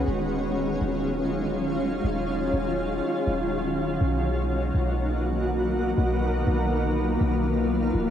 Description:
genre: hip hop.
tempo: 122 BPM.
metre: 4/4.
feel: half-time.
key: unclear.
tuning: A4 = 435 Hz.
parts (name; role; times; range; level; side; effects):
shimmering ambient pad; sustained chords; 0.0-8.1 s; Eb3 to F#4; -24 LUFS; equal; chorus, built-in reverb, cassette tape.
clean 808-style bass; bass; 0.0-8.1 s; Eb1 to B1; -28 LUFS; equal; none.
room: moderate studio reverb, RT60 0.6 s.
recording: home recording on cassette.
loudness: -23 LUFS.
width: side -9 dB against mid.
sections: 0.0-8.1 A section.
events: none.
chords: 0.1 Ebm11; 4.0 Bmaj7.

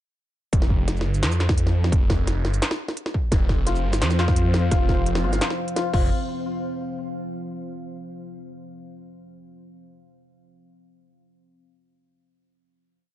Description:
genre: half-time drum and bass.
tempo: 172 BPM.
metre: 4/4.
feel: half-time.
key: unclear.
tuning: A4 = 439 Hz.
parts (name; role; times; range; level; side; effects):
phased detuned saw bass; bass; 0.5-6.1 s; F1 to F2; -22 LUFS; equal; phaser.
electronic kick drum; drums; 0.5-6.0 s; none; -21 LUFS; equal; distortion.
industrial drum kit; drums; 0.5-6.0 s; crash cymbal, hi-hat, shaker, snare drum; -27 LUFS; equal; none.
deep dark ambient pad; sustained chords; 4.3-6.1 s; F3 to F5; -32 LUFS; left 1 dB; chorus, built-in reverb, sidechain pumping.
pulsing gated texture; texture; 3.3-6.1 s; C4 to C5; -35 LUFS; left 3 dB; chorus, built-in reverb.
santur; arpeggios; 3.7-6.1 s; F4; -31 LUFS; left 6 dB; tape echo.
room: little or no reverb.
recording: dark, warm production, nothing above 10.6 kHz.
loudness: -20 LUFS.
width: side -13 dB against mid.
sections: 0.5-6.1 drop; 6.1-7.5 final hit.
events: drop 0.5-6.1.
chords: 0.5 F5; 6.1 N.C..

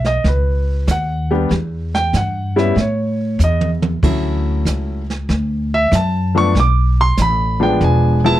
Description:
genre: jazz piano trio.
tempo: 95 BPM.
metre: 4/4.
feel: swing 69% on 8ths.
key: unclear.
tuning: A4 = 440 Hz.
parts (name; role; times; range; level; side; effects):
warm grand piano; melody; 0.0-8.4 s; F3 to D6; -18 LUFS; equal; none.
upright bass; bass; 0.0-8.4 s; E1 to A2; -17 LUFS; equal; none.
jazz brush drum kit; drums; 0.0-8.4 s; brushed snare drum, crash cymbal, hi-hat, kick drum, snare drum, toms; -21 LUFS; right 2 dB; none.
room: little or no reverb.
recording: close, detailed microphones.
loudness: -14 LUFS.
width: side -14 dB against mid.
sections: 0.0-8.4 A section.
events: grand piano solo 0.0-8.4; drum fill 3.4-4.0.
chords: 0.0 G#m7 (rootless); 1.5 Em; 2.8 A; 4.0 Dmaj9; 6.5 Bm7; 7.8 E7b9.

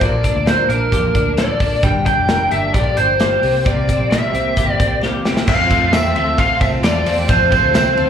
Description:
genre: jangly indie pop.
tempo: 132 BPM.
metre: 4/4.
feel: straight.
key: F major.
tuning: A4 = 440 Hz.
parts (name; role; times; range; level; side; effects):
lead guitar through a small cranked amp; melody; 0.0-8.1 s; Bb4 to G5; -16 LUFS; equal; overdrive, slapback echo.
picked steel-string acoustic guitar; accompaniment; 0.0-8.1 s; F2 to A4; -26 LUFS; right 6 dB; slapback echo.
twelve-string electric guitar; arpeggios; 0.0-8.1 s; F2 to A4; -23 LUFS; left 4 dB; ensemble chorus, slapback echo.
vintage muted picked electric bass; bass; 0.0-8.1 s; F1 to F2; -22 LUFS; equal; none.
modern studio drum kit; drums; 0.0-8.1 s; crash cymbal, hi-hat, kick drum, ride cymbal, snare drum; -19 LUFS; equal; none.
warm studio string section; sustained chords; 5.5-8.1 s; F4 to C6; -30 LUFS; left 2 dB; none.
tambourine; percussion; 5.5-7.9 s; none; -38 LUFS; right 2 dB; none.
room: light reverb.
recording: live gig heard through the venue's PA, club reverb.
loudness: -13 LUFS.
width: side -8 dB against mid.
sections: 0.0-5.5 A section; 5.5-8.1 B section.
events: drum fill 5.0-5.5.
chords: 0.0 Bbmaj7; 1.8 Gm7; 3.4 C7; 5.5 F.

